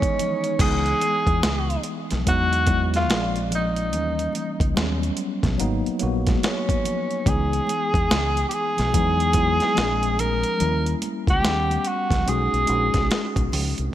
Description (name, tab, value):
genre	R&B, neo-soul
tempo	72 BPM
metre	4/4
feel	swing 63% on 16ths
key	C# dorian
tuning	A4 = 441 Hz
part	warm tenor saxophone	melody	0.0-13.5 s	C#4 to A#4	-24 LUFS	equal	none
part	electric guitar through a small old amp	second line	0.0-0.6 s	D#4 to G#4	-35 LUFS	right 8 dB	wide subtle chorus
part	mellow tine electric piano	accompaniment	0.0-13.9 s	D#3 to F#5	-27 LUFS	left 2 dB	medium stereo tremolo
part	dusty soul sampler-style drum kit	drums	0.0-13.9 s	crash cymbal, hi-hat, kick drum, snare drum	-25 LUFS	equal	overdrive
part	congas	percussion	0.2-13.8 s	none	-36 LUFS	right 2 dB	none
part	deep dub fingered electric bass	bass	0.6-13.9 s	G#1 to E2	-25 LUFS	equal	none
room	light reverb, digital ambience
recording	bright 1980s-style digital production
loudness	-20 LUFS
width	side -12 dB against mid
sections	0.6-13.9 A section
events	none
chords	0.0 C#m9; 2.3 Emaj9; 3.1 A#9; 3.9 D#7b9; 4.8 D#7alt; 5.6 G#m9 (rootless); 7.3 C#m7; 8.9 Emaj9; 9.8 A#9; 10.6 D#7b9; 11.4 D#7alt; 12.3 B6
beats	| 0.59 1.43 2.26 3.09 | 3.93 4.76 5.59 6.43 | 7.26 8.09 8.93 9.76 | 10.59 11.43 12.26 13.09 | 13.93